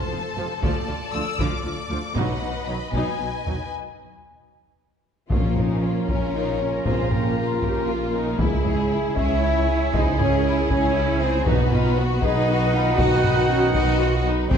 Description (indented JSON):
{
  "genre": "cinematic, epic orchestral film score",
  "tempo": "78 BPM (dotted quarters)",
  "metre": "6/8",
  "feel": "straight",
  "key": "unclear",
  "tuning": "A4 = 440 Hz",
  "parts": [
    { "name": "warm studio violin section", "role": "melody", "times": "0.0-14.6 s", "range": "Db4 to E6", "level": "-32 LUFS", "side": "left 7 dB", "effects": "none" },
    { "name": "warm symphonic violin section", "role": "second line", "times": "0.0-14.6 s", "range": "Bb3 to D#5", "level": "-30 LUFS", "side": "left 4 dB", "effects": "none" },
    { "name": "warm studio viola section", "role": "accompaniment", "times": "0.0-14.6 s", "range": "F3 to G5", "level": "-30 LUFS", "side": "right 2 dB", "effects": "none" },
    { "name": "rich symphonic cello section", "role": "bass", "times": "0.1-14.6 s", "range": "D2 to F#4", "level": "-29 LUFS", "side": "right 4 dB", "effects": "none" },
    { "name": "warm symphonic double bass section", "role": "bass", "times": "0.1-14.6 s", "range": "F1 to Eb2", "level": "-26 LUFS", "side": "right 2 dB", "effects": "none" },
    { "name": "clear trombone section", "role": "sustained chords", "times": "0.4-14.6 s", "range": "C3 to F4", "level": "-32 LUFS", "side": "right 2 dB", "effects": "none" },
    { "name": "warm French horn section", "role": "sustained chords", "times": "0.4-14.6 s", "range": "A3 to Fb5", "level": "-26 LUFS", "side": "left 4 dB", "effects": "none" },
    { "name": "taiko ensemble", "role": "drums", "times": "0.6-14.6 s", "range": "none", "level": "-26 LUFS", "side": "left 1 dB", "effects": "none" },
    { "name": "dark trumpet section", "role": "stabs", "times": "5.3-14.6 s", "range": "F#5 to Bb5", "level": "-30 LUFS", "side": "right 3 dB", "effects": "none" },
    { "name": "timpani", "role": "percussion", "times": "5.3-6.0 s", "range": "Bb2", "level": "-30 LUFS", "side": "left 1 dB", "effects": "none" }
  ],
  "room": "moderate scoring stage reverb, RT60 1.8 s",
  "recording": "dark, warm production",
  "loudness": "-19 LUFS",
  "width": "side -7 dB against mid",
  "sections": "0.0-5.3 A section; 5.3-14.6 B section",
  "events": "break 3.7-5.3; drum fill 4.5-5.3",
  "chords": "0.0 F; 0.6 Dm; 2.2 B; 3.7 N.C.; 5.3 Bbm; 8.4 Dbm; 11.5 B",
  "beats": "| 0.63 1.39 | 2.16 2.93 | 3.72 4.51 | 5.30 6.08 | 6.85 7.62 | 8.39 9.17 | 9.94 10.70 | 11.46 12.22 | 12.98 13.75 | 14.51"
}